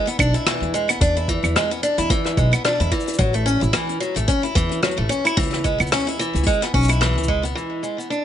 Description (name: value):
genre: folktronica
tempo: 110 BPM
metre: 4/4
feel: swing 56% on 16ths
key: unclear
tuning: A4 = 440 Hz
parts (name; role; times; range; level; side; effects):
- picked steel-string acoustic guitar; arpeggios; 0.0-8.2 s; E3 to E4; -21 LUFS; equal; vintage 12-bit sampler grit, low-pass filter, ping-pong delay
- vintage brush drum kit; drums; 0.1-8.2 s; cabasa, claves, hi-hat, rim click; -24 LUFS; left 1 dB; none
- upright bass; bass; 0.2-7.5 s; A1 to E2; -22 LUFS; equal; tube saturation
- electronic kick drum; drums; 0.2-7.4 s; none; -22 LUFS; equal; overdrive
room: studio ambience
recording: nothing above 10.5 kHz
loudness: -18 LUFS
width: side -10 dB against mid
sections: 0.0-7.6 A section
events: none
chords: 0.0 E7; 3.2 A6; 5.4 C#m7; 7.6 E7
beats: 0.47 | 1.01 1.56 2.10 2.65 | 3.19 3.74 4.28 4.83 | 5.38 5.92 6.47 7.01 | 7.56 8.10